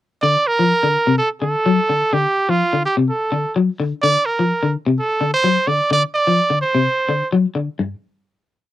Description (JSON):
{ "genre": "afrobeat", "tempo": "127 BPM", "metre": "4/4", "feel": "straight", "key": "unclear", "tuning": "A4 = 439 Hz", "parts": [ { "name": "bright trumpet", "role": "melody", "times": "0.2-7.3 s", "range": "F4 to D5", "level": "-17 LUFS", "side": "right 2 dB", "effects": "none" }, { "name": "electric guitar at the edge of break-up", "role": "arpeggios", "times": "0.2-7.9 s", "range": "G2 to F#3", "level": "-18 LUFS", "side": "left 4 dB", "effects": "lush chorus" } ], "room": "little or no reverb", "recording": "dry, close 1970s-style studio recording", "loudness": "-15 LUFS", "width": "side -14 dB against mid", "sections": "0.2-7.8 groove; 7.8-8.7 final note", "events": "none", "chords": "0.2 C9sus4; 1.2 D; 2.1 Csus24; 3.1 D; 4.0 C9sus4; 5.0 D7; 5.9 Csus24; 6.8 D7; 7.8 N.C." }